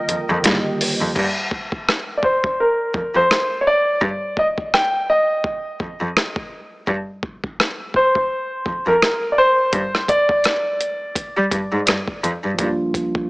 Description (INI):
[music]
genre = contemporary R&B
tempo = 84 BPM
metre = 4/4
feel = swing 58% on 16ths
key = unclear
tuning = A4 = 438 Hz
[part]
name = warm grand piano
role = melody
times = 0.0-12.2 s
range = Bb4 to G5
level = -18 LUFS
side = equal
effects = none
[part]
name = mellow tine electric piano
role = accompaniment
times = 0.0-1.2, 12.5-13.3 s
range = D3 to G4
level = -23 LUFS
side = right 1 dB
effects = none
[part]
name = hollow soft pad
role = sustained chords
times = 0.0-1.1 s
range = Bb4 to G5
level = -29 LUFS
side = right 1 dB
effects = ensemble chorus, sidechain pumping
[part]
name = rich cello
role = bass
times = 0.1-12.7 s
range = F2 to G3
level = -22 LUFS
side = equal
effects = none
[part]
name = dusty soul sampler-style drum kit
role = drums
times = 0.1-13.3 s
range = crash cymbal, hi-hat, kick drum, rim click, snare drum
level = -20 LUFS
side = equal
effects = overdrive
[sound]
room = moderate lush hall reverb, RT60 2.5 s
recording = small speaker sound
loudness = -17 LUFS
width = side -24 dB against mid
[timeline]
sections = 0.0-1.2 A section; 1.2-13.3 B section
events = break 0.0-1.2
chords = 0.0 Ebmaj7; 1.2 Fsus2; 9.7 Fsus2 (rootless); 12.6 Gm7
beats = 0.44 | 1.16 1.87 2.58 3.30 | 4.01 4.73 5.44 6.16 | 6.87 7.58 8.30 9.01 | 9.73 10.44 11.16 11.87 | 12.59